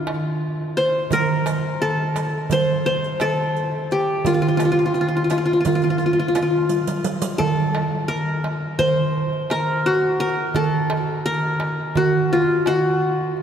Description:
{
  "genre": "Turkish makam ensemble",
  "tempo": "171 BPM (eighths)",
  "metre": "9/8",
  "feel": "straight",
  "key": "F makam rast",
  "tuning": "A4 = 440 Hz",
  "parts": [
    { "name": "qanun", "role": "melody", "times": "0.0-13.4 s", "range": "F4 to C5", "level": "-20 LUFS", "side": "left 1 dB", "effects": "none" },
    { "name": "darbuka", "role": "percussion", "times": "0.1-13.4 s", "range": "none", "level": "-23 LUFS", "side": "right 3 dB", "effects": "none" },
    { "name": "riq", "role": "percussion", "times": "1.1-7.4 s", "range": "none", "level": "-32 LUFS", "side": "right 2 dB", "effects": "none" }
  ],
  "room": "wet cathedral reverb, RT60 5.3 s",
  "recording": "recorded in a church or concert hall",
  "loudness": "-18 LUFS",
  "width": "side -8 dB against mid",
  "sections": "0.0-7.4 A section; 7.4-13.4 B section",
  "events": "drum fill 6.7-7.4",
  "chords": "none"
}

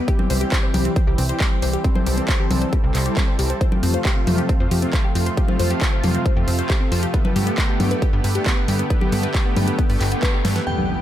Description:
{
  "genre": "uplifting trance",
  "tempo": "136 BPM",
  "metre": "4/4",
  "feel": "straight",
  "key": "unclear",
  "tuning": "A4 = 440 Hz",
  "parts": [
    { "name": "analog pluck", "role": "arpeggios", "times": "0.0-10.6 s", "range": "B3 to C5", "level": "-28 LUFS", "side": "left 2 dB", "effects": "chorus, phaser, sidechain pumping, ping-pong delay" },
    { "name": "lush unison pad", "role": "sustained chords", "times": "0.1-11.0 s", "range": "C3 to A4", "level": "-24 LUFS", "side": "equal", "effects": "chorus, vintage 12-bit sampler grit, sidechain pumping" },
    { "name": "big-room dance drum kit", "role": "drums", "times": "0.1-10.9 s", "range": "congas, crash cymbal, handclaps, hi-hat, snare drum", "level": "-26 LUFS", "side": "left 1 dB", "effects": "low-pass filter on hats, low-pass filter on snare, low-pass filter on cymbals, low-pass filter on perc" },
    { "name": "electronic kick drum", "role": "drums", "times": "0.1-10.3 s", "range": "none", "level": "-19 LUFS", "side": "equal", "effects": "none" },
    { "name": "plucky analog bass", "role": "bass", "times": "0.3-11.0 s", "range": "G1 to G2", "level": "-21 LUFS", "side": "equal", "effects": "sidechain pumping" },
    { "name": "glassy synth bell", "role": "second line", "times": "10.7-11.0 s", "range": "G5", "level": "-26 LUFS", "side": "left 3 dB", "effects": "chorus" },
    { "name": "impact", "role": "sound effects", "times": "10.7-11.0 s", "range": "none", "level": "-26 LUFS", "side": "equal", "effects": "none" }
  ],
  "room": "light reverb, digital ambience",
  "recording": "none",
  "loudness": "-17 LUFS",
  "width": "side -12 dB against mid",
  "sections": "0.0-10.7 A section",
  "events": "filter sweep on analog synth pad 0.0-10.7; band accent 10.2; drum fill 10.4; impact 10.7-11.0",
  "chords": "0.1 C; 3.6 F; 7.1 Gadd9"
}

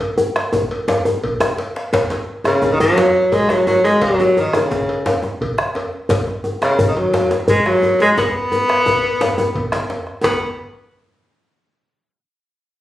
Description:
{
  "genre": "west african traditional, West African drum ensemble",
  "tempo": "116 BPM (dotted quarters)",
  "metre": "12/8",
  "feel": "straight",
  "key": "B major pentatonic",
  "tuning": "A4 = 440 Hz",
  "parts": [
    { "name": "cowbell", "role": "percussion", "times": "0.0-10.4 s", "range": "none", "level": "-26 LUFS", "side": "left 1 dB", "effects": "none" },
    { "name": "djembe", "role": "percussion", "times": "0.0-10.4 s", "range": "none", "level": "-25 LUFS", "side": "left 1 dB", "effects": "none" },
    { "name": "djembe", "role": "percussion", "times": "0.2-10.4 s", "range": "none", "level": "-20 LUFS", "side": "left 1 dB", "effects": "none" },
    { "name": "bombo", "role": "percussion", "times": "0.4-10.4 s", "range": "none", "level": "-24 LUFS", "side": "right 1 dB", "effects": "none" },
    { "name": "breathy tenor saxophone", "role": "melody", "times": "2.5-10.4 s", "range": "C#3 to B3", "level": "-15 LUFS", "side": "equal", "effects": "none" }
  ],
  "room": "moderate studio ambience, RT60 0.5 s",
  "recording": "recorded on a phone in the room, studio reverb, compression",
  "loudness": "-15 LUFS",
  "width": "side -13 dB against mid",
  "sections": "0.0-1.9 A section; 1.9-10.2 B section; 10.2-12.3 C section",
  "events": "drum fill 0.0-1.9, 8.2-10.2",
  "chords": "none"
}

